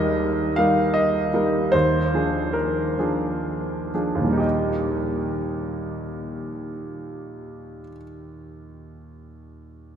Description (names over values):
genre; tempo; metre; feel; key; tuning
classical, romantic character piece for solo piano; 57-86 BPM; 3/4; rubato; Eb major; A4 = 441 Hz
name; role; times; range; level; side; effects
clear concert grand piano; solo; 0.0-10.0 s; Eb2 to F5; -22 LUFS; equal; none
room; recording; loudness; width
wet cathedral reverb, RT60 5.8 s; in a vast, echoing space; -21 LUFS; side -8 dB against mid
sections
0.0-4.4 A section; 4.4-10.0 B section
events
slowing down 0.0-4.4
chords
0.0 Eb; 1.7 Bb7/Eb; 4.4 Eb